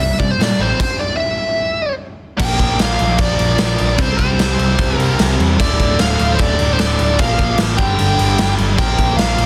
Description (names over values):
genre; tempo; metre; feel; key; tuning
hard rock; 150 BPM; 4/4; straight; unclear; A4 = 439 Hz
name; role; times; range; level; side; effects
dark smooth lead guitar; melody; 0.0-9.5 s; C5 to G5; -22 LUFS; equal; overdrive, slapback echo
overdriven electric guitar; riff; 0.0-9.5 s; D2 to C4; -26 LUFS; equal; none
overdriven electric guitar; riff; 0.0-9.5 s; D2 to C4; -26 LUFS; equal; none
picked electric bass; bass; 0.0-9.5 s; D1 to C3; -21 LUFS; equal; none
raw garage drum kit; drums; 0.0-9.5 s; crash cymbal, hi-hat, kick drum, snare drum; -20 LUFS; equal; none
overdriven semi-hollow guitar; riff; 2.4-9.5 s; D2 to C4; -28 LUFS; equal; none
room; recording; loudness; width
little or no reverb; dense, heavily limited modern master; -16 LUFS; mono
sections
0.0-2.4 A section; 2.4-9.5 B section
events
stop 0.8-2.4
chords
0.0 C; 2.4 Bb; 4.0 C5; 5.6 D5; 7.2 Bb5; 7.8 G5; 8.8 Bb5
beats
0.39 | 0.79 1.20 1.59 2.00 | 2.40 2.80 3.19 3.59 | 3.99 4.39 4.79 5.19 | 5.59 5.99 6.39 6.79 | 7.19 7.59 7.99 8.39 | 8.79 9.19